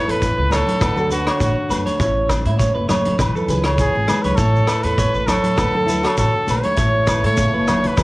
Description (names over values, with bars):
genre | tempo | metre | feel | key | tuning
highlife guitar band | 101 BPM | 4/4 | swing 54% on 16ths | A major | A4 = 442 Hz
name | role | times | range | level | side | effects
clear trumpet | melody | 0.0-8.0 s | F#4 to C#5 | -21 LUFS | equal | cassette tape
nylon-string guitar | accompaniment | 0.0-8.0 s | A2 to C#5 | -25 LUFS | left 2 dB | none
electric guitar through a small old amp | arpeggios | 0.0-8.0 s | E4 to C#5 | -22 LUFS | right 2 dB | tape echo
upright bass | bass | 0.1-8.0 s | E1 to A2 | -22 LUFS | equal | none
vintage drum kit | drums | 0.1-8.0 s | hi-hat, kick drum, rim click | -24 LUFS | equal | none
shekere | percussion | 0.2-8.0 s | none | -27 LUFS | equal | none
agogo bells | percussion | 0.5-8.0 s | none | -27 LUFS | left 2 dB | none
congas | percussion | 0.5-8.0 s | none | -26 LUFS | equal | none
mellow tonewheel organ | sustained chords | 6.8-8.0 s | E5 to C#6 | -31 LUFS | equal | slow rotary speaker
room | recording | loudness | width
light reverb, small room ambience | home recording on cassette | -15 LUFS | side -21 dB against mid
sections
0.0-8.0 A section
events
none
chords
0.0 A; 0.8 D; 2.0 A; 3.2 E; 4.4 A; 5.6 D; 6.8 A